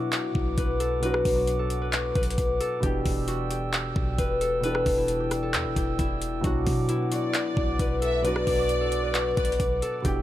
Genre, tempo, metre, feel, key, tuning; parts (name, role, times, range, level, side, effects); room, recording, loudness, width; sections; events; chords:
hip hop, trap; 133 BPM; 4/4; half-time; B minor; A4 = 439 Hz
concert harp; melody; 0.0-10.2 s; E4 to B4; -28 LUFS; left 3 dB
dark grand piano; accompaniment; 0.0-10.2 s; B2 to A4; -31 LUFS; right 2 dB
glass harmonica; sustained chords; 0.0-10.2 s; B4 to E6; -36 LUFS; right 2 dB
clean 808-style bass; bass; 0.0-10.2 s; E1 to B2; -31 LUFS; equal
trap drum kit; drums; 0.1-10.2 s; handclaps, hi-hat, kick drum, rim click; -29 LUFS; equal
warm studio violin section; second line; 7.1-9.6 s; D5 to E5; -32 LUFS; right 2 dB; digital delay
little or no reverb; vinyl crackle; -23 LUFS; side -13 dB against mid
0.0-10.2 A section
0.0 Bm; 2.8 Em7; 6.4 Bm